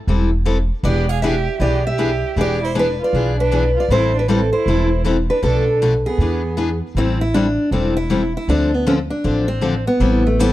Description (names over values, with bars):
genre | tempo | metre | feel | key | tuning
acoustic string swing (jazz manouche) | 157 BPM | 4/4 | swing 63% on 8ths | A minor | A4 = 440 Hz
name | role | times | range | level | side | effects
picked steel-string acoustic guitar | accompaniment | 0.1-10.5 s | B2 to A4 | -21 LUFS | left 3 dB | none
upright bass | bass | 0.1-10.5 s | E1 to E2 | -20 LUFS | equal | none
picked steel-string acoustic guitar | melody | 0.8-10.5 s | A3 to F5 | -20 LUFS | equal | none
warm violin | second line | 0.9-6.8 s | B3 to G#4 | -25 LUFS | right 7 dB | none
room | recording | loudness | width
studio ambience | dry, close 1970s-style studio recording | -15 LUFS | side -15 dB against mid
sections
0.0-7.0 A section; 7.0-10.5 A section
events
none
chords
0.0 Am7; 0.8 E7#9; 3.9 Am7; 5.4 Bm7b5; 6.2 E7; 7.0 Am7; 8.5 Dm7; 10.0 Am7